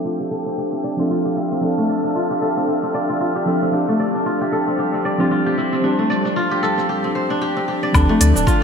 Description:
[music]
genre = organic downtempo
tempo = 114 BPM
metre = 4/4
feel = swing 57% on 16ths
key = D minor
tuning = A4 = 443 Hz
[part]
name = muted felt-like synth keys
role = accompaniment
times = 0.0-8.6 s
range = F3 to A4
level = -22 LUFS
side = right 1 dB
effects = chorus, sidechain pumping, digital delay, shimmer reverb
[part]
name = granular cloud pad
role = sustained chords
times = 0.0-8.6 s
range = G3 to C6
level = -25 LUFS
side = equal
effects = built-in reverb, wide subtle chorus, sidechain pumping, shimmer reverb
[part]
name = kora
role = arpeggios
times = 0.0-8.6 s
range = A3 to D5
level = -21 LUFS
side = left 1 dB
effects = low-pass filter, digital delay, shimmer reverb
[part]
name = electronic cabasa, woodblock and hi-hat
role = drums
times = 0.1-8.6 s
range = none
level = -23 LUFS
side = left 1 dB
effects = low-pass filter on perc, low-pass filter on hats, low-pass filter on snare, low-pass filter on room
[part]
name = warm sub bass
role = bass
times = 7.9-8.4 s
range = D1 to D2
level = -15 LUFS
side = equal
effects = none
[part]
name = electronic kick drum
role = drums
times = 7.9-8.6 s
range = none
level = -18 LUFS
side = equal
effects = none
[sound]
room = wet lush hall reverb, RT60 1.6 s, digital ambience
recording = bright 1980s-style digital production, low-pass filter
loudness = -17 LUFS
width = side -6 dB against mid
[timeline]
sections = 0.0-7.9 A section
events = filter sweep on kora 0.0-7.9; filter sweep 0.0-7.9; break 6.9-7.9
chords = 0.0 Dm7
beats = 0.05 0.58 1.10 | 1.63 2.15 2.68 3.21 | 3.73 4.26 4.79 5.31 | 5.84 6.37 6.89 7.42 | 7.95 8.47

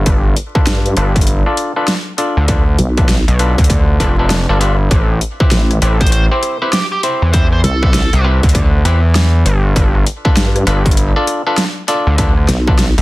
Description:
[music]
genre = glitch hop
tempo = 99 BPM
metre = 4/4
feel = swing 62% on 16ths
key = unclear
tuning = A4 = 440 Hz
[part]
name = gritty driven synth bass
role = bass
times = 0.0-13.0 s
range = F1 to E2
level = -13 LUFS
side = equal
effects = distortion
[part]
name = overdriven clav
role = stabs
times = 0.1-12.8 s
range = C4 to D5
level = -19 LUFS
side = left 1 dB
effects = sidechain pumping, low-pass filter, digital delay
[part]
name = dubstep drum kit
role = drums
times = 0.1-13.0 s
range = hi-hat, rim click, snare drum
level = -19 LUFS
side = equal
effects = studio reverb
[part]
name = electronic kick drum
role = drums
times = 0.1-12.8 s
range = none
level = -14 LUFS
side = equal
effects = distortion, studio reverb
[part]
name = vowel-sweep wobble bass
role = bass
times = 0.7-12.9 s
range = A1 to G2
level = -14 LUFS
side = equal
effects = chorus
[part]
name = biting lead guitar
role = melody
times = 6.0-8.2 s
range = G4 to C5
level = -21 LUFS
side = right 2 dB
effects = overdrive, digital delay
[sound]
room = little or no reverb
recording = dense, heavily limited modern master, vinyl crackle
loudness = -11 LUFS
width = side -19 dB against mid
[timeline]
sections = 0.0-13.0 A section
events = filter sweep on clav 0.0-13.0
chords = 0.1 G7; 4.9 Am7; 9.8 G7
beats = | 0.06 0.67 1.28 1.88 | 2.49 3.09 3.70 4.31 | 4.91 5.52 6.12 6.73 | 7.34 7.94 8.55 9.15 | 9.76 10.37 10.97 11.58 | 12.19 12.79

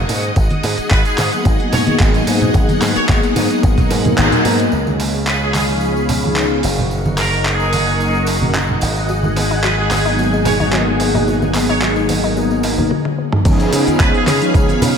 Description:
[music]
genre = nu-disco, nu disco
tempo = 110 BPM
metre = 4/4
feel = swing 53% on 16ths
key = G# dorian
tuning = A4 = 441 Hz
[part]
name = string machine, full ensemble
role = sustained chords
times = 0.0-15.0 s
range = G#4 to C#6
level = -22 LUFS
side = left 1 dB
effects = ensemble chorus, sidechain pumping
[part]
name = slap bass with an envelope filter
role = bass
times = 0.0-14.9 s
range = F#1 to C#3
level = -20 LUFS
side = equal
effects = none
[part]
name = dusty soul sampler-style drum kit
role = drums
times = 0.1-14.9 s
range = crash cymbal, handclaps, hi-hat, shaker, toms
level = -21 LUFS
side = right 1 dB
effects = overdrive, studio reverb
[part]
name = tambourine and congas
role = percussion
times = 0.1-14.9 s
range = none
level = -24 LUFS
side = right 2 dB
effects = none
[part]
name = electronic kick drum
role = drums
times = 0.4-3.9, 13.5-14.7 s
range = none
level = -15 LUFS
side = equal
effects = overdrive, studio reverb
[part]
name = muted trumpet section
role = melody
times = 0.9-14.4 s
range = G#4 to C#5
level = -24 LUFS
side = right 2 dB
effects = tape echo
[part]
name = mellow synth brass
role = accompaniment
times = 1.3-14.9 s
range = E#3 to A#4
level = -18 LUFS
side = left 1 dB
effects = chorus, sidechain pumping, diffuse ambient delay
[part]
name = analog pluck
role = arpeggios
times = 9.1-13.4 s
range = F#3 to D#4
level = -25 LUFS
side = left 4 dB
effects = chorus, sidechain pumping, tape echo
[sound]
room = moderate plate reverb, RT60 2.6 s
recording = dreamy mix soaked in reverb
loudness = -13 LUFS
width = side -7 dB against mid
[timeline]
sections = 0.0-4.7 A section; 4.7-13.5 B section; 13.5-15.0 C section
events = filter sweep on analog polysynth 0.0-4.7; kick drops out 4.2-4.7; band accent 4.2; filter sweep on string machine 4.7-13.5; drum fill 12.9-13.5; drop 13.5-15.0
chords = 0.1 G#m7; 4.7 C#7; 6.6 F#6; 8.8 G#m7; 13.5 C#7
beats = | 0.36 0.91 1.46 2.00 | 2.55 3.09 3.64 4.18 | 4.73 5.27 5.82 6.36 | 6.91 7.46 8.00 8.55 | 9.09 9.64 10.18 10.73 | 11.27 11.82 12.36 12.91 | 13.46 14.00 14.55

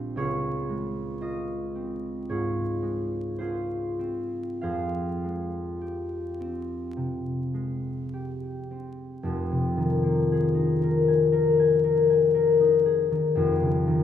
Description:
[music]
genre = classical, solo harp piece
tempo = 47-59 BPM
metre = 4/4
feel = rubato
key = F minor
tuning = A4 = 439 Hz
[part]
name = concert harp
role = solo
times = 0.0-14.0 s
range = F1 to Ab5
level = -24 LUFS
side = left 3 dB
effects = none
[sound]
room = wet scoring stage reverb, RT60 1.7 s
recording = minimal, uncompressed stereo recording, vinyl crackle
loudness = -23 LUFS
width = side -9 dB against mid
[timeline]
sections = 0.0-9.3 A section; 9.3-14.0 B section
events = none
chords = 0.2 Dbmaj7; 4.6 Fmadd9; 9.3 Fm11; 13.4 Eb9sus4/F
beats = | 0.16 1.23 2.29 3.38 | 4.62 5.81 6.98 8.14 | 9.26 10.30 11.32 12.35 | 13.37

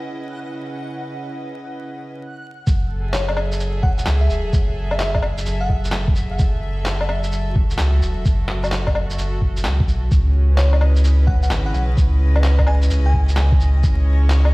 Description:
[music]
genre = future garage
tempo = 129 BPM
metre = 4/4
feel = swing 65% on 16ths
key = unclear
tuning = A4 = 440 Hz
[part]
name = rich chamber string section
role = sustained chords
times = 0.0-14.5 s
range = C#3 to E5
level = -29 LUFS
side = equal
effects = sidechain pumping
[part]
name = backwards swelling texture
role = texture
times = 0.0-2.2 s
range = F#5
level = -37 LUFS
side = right 1 dB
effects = built-in reverb
[part]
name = soft dub sub bass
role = bass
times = 2.7-14.5 s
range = E1 to C#2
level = -17 LUFS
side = equal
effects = tube saturation, sidechain pumping
[part]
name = electronic kick drum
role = drums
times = 2.7-14.0 s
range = none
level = -18 LUFS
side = equal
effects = none
[part]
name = electronic shaker, handclaps and woodblock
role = drums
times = 2.7-14.5 s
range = none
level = -25 LUFS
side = left 1 dB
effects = low-pass filter on perc, low-pass filter on snare, low-pass filter on room
[part]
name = bell-like FM electric piano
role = melody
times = 3.1-5.9, 10.6-13.7 s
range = C#5 to G#5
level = -30 LUFS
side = left 1 dB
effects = chorus, tape echo
[sound]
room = digital ambience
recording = played on a big sound system in a bare room, stone room reverb, vinyl crackle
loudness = -16 LUFS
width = side -23 dB against mid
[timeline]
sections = 0.0-2.7 A section; 2.7-14.5 B section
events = filter sweep on string section 0.0-2.7; break 2.2-2.7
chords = 0.0 C#m9; 2.7 F#m9; 10.1 C#m9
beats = 0.34 | 0.81 1.27 1.74 2.21 | 2.67 3.14 3.60 4.07 | 4.53 5.00 5.46 5.93 | 6.39 6.86 7.32 7.79 | 8.25 8.72 9.18 9.65 | 10.11 10.58 11.04 11.51 | 11.97 12.44 12.90 13.37 | 13.83 14.30

